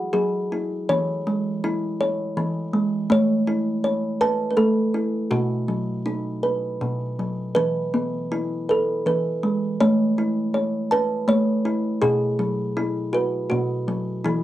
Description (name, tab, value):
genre	children's music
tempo	81 BPM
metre	3/4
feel	rubato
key	E major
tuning	A4 = 440 Hz
part	kalimba	solo	0.0-14.4 s	B2 to A5	-20 LUFS	equal	none
room	light reverb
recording	none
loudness	-20 LUFS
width	side -14 dB against mid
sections	0.0-14.4 A section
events	none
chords	0.0 Eadd9; 0.9 C#m/E; 3.1 A; 5.3 B5; 6.1 B; 7.6 E; 9.8 A; 12.0 Bsus4; 13.5 B5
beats	0.15 | 0.90 1.64 2.38 | 3.11 3.85 4.58 | 5.32 6.05 6.81 | 7.56 8.31 9.06 | 9.80 10.54 11.28 | 12.02 12.77 13.51 | 14.25